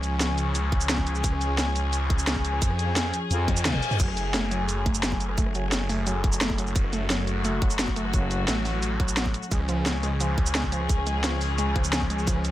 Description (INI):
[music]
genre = dark technical drum and bass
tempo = 174 BPM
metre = 4/4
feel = straight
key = F# harmonic minor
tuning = A4 = 439 Hz
[part]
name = dark studio string section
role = sustained chords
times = 0.0-12.5 s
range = E#3 to G#4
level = -31 LUFS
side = left 2 dB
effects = sidechain pumping
[part]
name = snarling distorted saw bass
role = bass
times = 0.0-12.5 s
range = F#1 to E#2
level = -28 LUFS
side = equal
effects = distortion, overdrive
[part]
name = drum and bass drum kit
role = drums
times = 0.0-12.5 s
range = crash cymbal, hi-hat, rim click, shaker, snare drum, toms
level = -28 LUFS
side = equal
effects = none
[part]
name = electronic kick drum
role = drums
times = 0.7-12.3 s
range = none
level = -26 LUFS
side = equal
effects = none
[part]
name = growling FM bass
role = bass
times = 3.3-3.8, 8.1-8.5 s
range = F#1 to E#2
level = -26 LUFS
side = equal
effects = none
[part]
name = reverse cymbal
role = sound effects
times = 3.5-4.0 s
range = none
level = -33 LUFS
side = left 5 dB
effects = none
[part]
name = warbly dusty pluck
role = arpeggios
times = 4.0-12.4 s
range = E#3 to A3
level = -33 LUFS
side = right 2 dB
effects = chorus, sidechain pumping, tape echo
[sound]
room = little or no reverb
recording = none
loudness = -23 LUFS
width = side -14 dB against mid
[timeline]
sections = 0.0-12.5 A section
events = reverse cymbal 3.5-4.0; drum fill 3.5-4.0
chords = 0.0 C#; 4.0 F#madd9; 9.5 C#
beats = 0.20 0.55 0.90 | 1.24 1.58 1.93 2.27 | 2.62 2.96 3.31 3.65 | 4.00 4.34 4.69 5.03 | 5.38 5.72 6.07 6.41 | 6.76 7.10 7.45 7.79 | 8.14 8.48 8.83 9.17 | 9.52 9.86 10.21 10.55 | 10.89 11.24 11.58 11.93 | 12.27